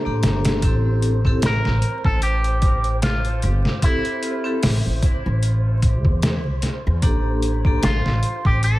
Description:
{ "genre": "trip hop", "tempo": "75 BPM", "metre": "4/4", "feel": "swing 56% on 16ths", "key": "A phrygian", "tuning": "A4 = 440 Hz", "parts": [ { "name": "wind-like tuned noise texture", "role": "texture", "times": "0.0-8.8 s", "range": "C5", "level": "-34 LUFS", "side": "right 2 dB", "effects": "built-in reverb" }, { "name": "vibraphone with medium hard mallets", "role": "accompaniment", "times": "0.1-7.8 s", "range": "Bb3 to A4", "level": "-26 LUFS", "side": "left 1 dB", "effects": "harmonic tremolo, tape echo" }, { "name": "upright bass", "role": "bass", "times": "0.1-8.8 s", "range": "G1 to A2", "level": "-20 LUFS", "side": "equal", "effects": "none" }, { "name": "trip hop sampler-style drum kit", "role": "drums", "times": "0.2-8.8 s", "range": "hi-hat, kick drum, snare drum", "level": "-20 LUFS", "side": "equal", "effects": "none" }, { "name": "electric guitar with an envelope filter", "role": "melody", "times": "1.5-8.8 s", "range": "E4 to Bb4", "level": "-27 LUFS", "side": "equal", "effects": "dub echo" } ], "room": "little or no reverb", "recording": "vinyl crackle", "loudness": "-17 LUFS", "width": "side -17 dB against mid", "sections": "0.0-8.8 A section", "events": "none", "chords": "0.0 Gmadd9; 0.6 Am7; 7.0 Gmadd9" }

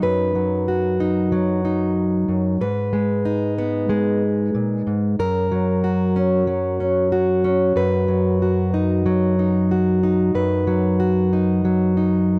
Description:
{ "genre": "folk", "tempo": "93 BPM", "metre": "4/4", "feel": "straight", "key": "B major", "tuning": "A4 = 440 Hz", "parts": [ { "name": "fingerpicked plugged-in steel-string acoustic guitar", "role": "solo", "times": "0.0-12.4 s", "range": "F#2 to B4", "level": "-20 LUFS", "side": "equal", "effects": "none" } ], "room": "little or no reverb", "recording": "dry, close 1970s-style studio recording", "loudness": "-20 LUFS", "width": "mono", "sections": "0.0-12.4 A section", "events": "none", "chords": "0.0 B/F#; 2.6 G#m; 5.2 F#; 7.8 B/F#" }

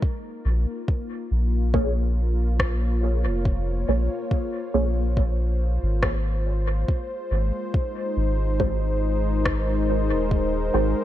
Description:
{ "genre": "ambient dub", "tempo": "70 BPM", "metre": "4/4", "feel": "swing 54% on 16ths", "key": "Bb minor", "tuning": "A4 = 440 Hz", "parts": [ { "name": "warm analog pad", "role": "sustained chords", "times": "0.0-11.0 s", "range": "Ab3 to Db5", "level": "-28 LUFS", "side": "left 1 dB", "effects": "chorus" }, { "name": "electronic kick drum", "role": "drums", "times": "0.0-10.5 s", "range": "none", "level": "-24 LUFS", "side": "equal", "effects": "none" }, { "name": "soft dub sub bass", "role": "bass", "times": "0.5-10.9 s", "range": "Eb1 to Bb1", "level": "-23 LUFS", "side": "equal", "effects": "none" }, { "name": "filtered dub chord stab", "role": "stabs", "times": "1.7-10.9 s", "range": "Ab3 to Db5", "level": "-28 LUFS", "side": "right 2 dB", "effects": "phaser, ensemble chorus, dub echo" }, { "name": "electronic rim click", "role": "drums", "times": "2.6-9.6 s", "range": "none", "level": "-31 LUFS", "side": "equal", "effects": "dub echo" } ], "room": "light reverb, digital ambience", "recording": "none", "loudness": "-22 LUFS", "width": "side -13 dB against mid", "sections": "0.0-11.0 A section", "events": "none", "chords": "0.0 Bbm7; 6.9 Ab7" }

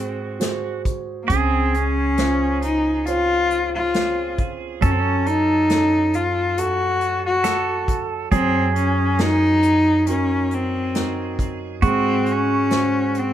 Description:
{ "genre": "acoustic folk-pop ballad", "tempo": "68 BPM", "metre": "4/4", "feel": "straight", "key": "Db major", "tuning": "A4 = 440 Hz", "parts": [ { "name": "warm cello", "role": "melody", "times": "0.0-13.3 s", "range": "Bb3 to Gb4", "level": "-20 LUFS", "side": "left 2 dB", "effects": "plate reverb" }, { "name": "pedal steel guitar", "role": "second line", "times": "0.0-13.3 s", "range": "Gb4 to A4", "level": "-27 LUFS", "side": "right 6 dB", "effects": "none" }, { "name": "warm upright piano", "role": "accompaniment", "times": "0.0-13.3 s", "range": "Db3 to C5", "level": "-28 LUFS", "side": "right 6 dB", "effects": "none" }, { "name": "upright bass", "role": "bass", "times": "0.0-13.3 s", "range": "Db2 to Ab2", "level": "-26 LUFS", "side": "equal", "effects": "none" }, { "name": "unplugged drum kit", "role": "drums", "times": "0.4-13.3 s", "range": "hi-hat, kick drum, snare drum", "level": "-25 LUFS", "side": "equal", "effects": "none" } ], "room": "moderate small room reverb, RT60 0.6 s", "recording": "none", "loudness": "-18 LUFS", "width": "side -11 dB against mid", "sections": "0.0-13.3 A section", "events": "none", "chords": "0.0 Ab7; 1.3 Dbmaj7; 4.8 Gbm; 8.3 Ebm/Gb; 11.8 Ab7" }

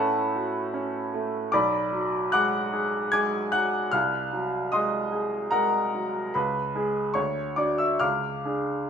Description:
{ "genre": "classical, romantic character piece for solo piano", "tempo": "74 BPM", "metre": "3/4", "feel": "rubato", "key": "unclear", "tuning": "A4 = 440 Hz", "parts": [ { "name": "clear upright piano", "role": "solo", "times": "0.0-8.9 s", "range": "B1 to G#6", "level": "-24 LUFS", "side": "equal", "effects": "none" } ], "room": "moderate large studio reverb, RT60 0.8 s", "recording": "none", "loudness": "-24 LUFS", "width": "side -7 dB against mid", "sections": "0.0-8.9 A section", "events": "none", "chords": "0.0 F#m/A; 1.5 G#m7b5/B; 3.9 G#7/B#; 6.3 C#5; 7.2 D; 8.0 C#" }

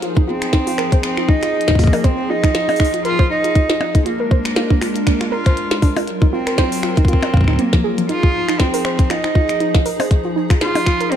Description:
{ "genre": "IDM", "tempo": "119 BPM", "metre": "4/4", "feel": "swing 56% on 16ths", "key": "F phrygian", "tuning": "A4 = 440 Hz", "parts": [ { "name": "hollow soft pad", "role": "sustained chords", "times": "0.0-11.2 s", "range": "F3 to Bb4", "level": "-25 LUFS", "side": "left 2 dB", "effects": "chorus, sidechain pumping" }, { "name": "soft round pluck", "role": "arpeggios", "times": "0.0-11.2 s", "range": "F3 to F5", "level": "-22 LUFS", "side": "right 2 dB", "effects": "chorus, digital delay" }, { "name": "glitchy drum kit", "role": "drums", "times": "0.0-11.2 s", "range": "finger snaps, hi-hat, percussion blips, snare drum", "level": "-23 LUFS", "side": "left 2 dB", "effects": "studio reverb, digital delay" }, { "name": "electronic kick drum", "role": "drums", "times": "0.2-11.0 s", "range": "none", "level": "-14 LUFS", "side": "equal", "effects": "studio reverb" }, { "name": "rich cello", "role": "melody", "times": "0.3-11.2 s", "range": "Bb3 to F4", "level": "-20 LUFS", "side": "right 2 dB", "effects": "digital delay" } ], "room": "light reverb", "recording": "dark, warm production", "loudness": "-14 LUFS", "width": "side -9 dB against mid", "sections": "0.0-11.2 A section", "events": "none", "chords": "0.0 Fm7; 4.1 Bb7; 6.1 Gbmaj7; 8.1 Fm7" }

